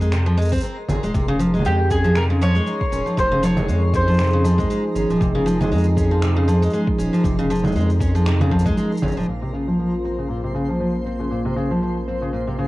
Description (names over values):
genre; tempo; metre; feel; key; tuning
folktronica; 118 BPM; 4/4; swing 56% on 16ths; Db major; A4 = 440 Hz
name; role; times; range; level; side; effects
picked steel-string acoustic guitar; arpeggios; 0.0-12.7 s; Bb2 to Ab4; -22 LUFS; equal; low-pass filter, cassette tape, analog delay
round analog bass; bass; 0.0-12.7 s; Eb1 to F2; -21 LUFS; equal; none
electronic shaker, finger snaps and congas; drums; 0.0-12.7 s; none; -28 LUFS; right 1 dB; low-pass filter on perc, cassette tape, low-pass filter on snare, low-pass filter on room
twinkling granular texture; texture; 0.0-12.7 s; Bb4 to C6; -37 LUFS; left 1 dB; built-in reverb, cassette tape, plate reverb
electronic kick drum; drums; 0.5-8.7 s; none; -24 LUFS; equal; cassette tape
warm analog pad; sustained chords; 1.1-12.7 s; F3 to C5; -25 LUFS; right 1 dB; chorus, cassette tape, plate reverb
mandolin; melody; 1.7-4.9 s; G4 to Db5; -22 LUFS; equal; cassette tape, plate reverb
room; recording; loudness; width
wet small room reverb, RT60 0.5 s; home recording on cassette; -17 LUFS; side -18 dB against mid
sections
0.0-9.3 A section; 9.3-12.7 B section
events
filter sweep on steel-string acoustic guitar 9.3-12.7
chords
0.0 Fm; 1.1 Dbmaj7; 9.3 Bbmadd9